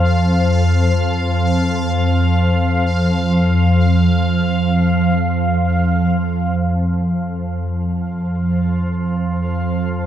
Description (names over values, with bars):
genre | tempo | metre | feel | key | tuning
dark ambient drone | free time | none | none | unclear | A4 = 440 Hz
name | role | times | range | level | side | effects
organ-like drone | drone | 0.0-10.1 s | F2 to F3 | -15 LUFS | equal | ensemble chorus, built-in reverb
bubbling stepped-filter texture | texture | 0.0-10.1 s | F5 | -24 LUFS | equal | chorus, built-in reverb
room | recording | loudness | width
wet cathedral reverb, RT60 5.8 s | in a vast, echoing space | -15 LUFS | side -10 dB against mid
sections
0.0-6.6 A section; 6.6-10.1 B section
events
fade-in on synth texture 6.6-10.1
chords
none